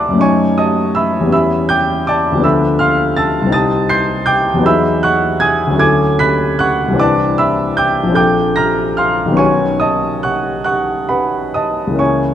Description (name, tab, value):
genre	classical, impressionist solo piano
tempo	43-55 BPM (dotted quarters)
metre	6/8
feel	rubato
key	unclear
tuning	A4 = 440 Hz
part	clear baby grand piano	solo	0.0-12.3 s	A#1 to C7	-12 LUFS	equal	none
room	moderate scoring stage reverb, RT60 2.1 s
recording	dark, warm production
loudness	-12 LUFS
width	side -10 dB against mid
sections	0.0-12.3 A section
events	none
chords	0.2 F#m6; 1.3 Em6; 2.4 Dm6; 3.5 Cm6; 4.7 Emaj9; 5.8 Dmaj9; 7.0 Cmaj9; 8.2 A#maj9; 9.4 Badd9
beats	| 0.21 1.32 | 2.44 3.53 | 4.65 5.80 | 7.00 8.18 | 9.40 10.66 | 11.99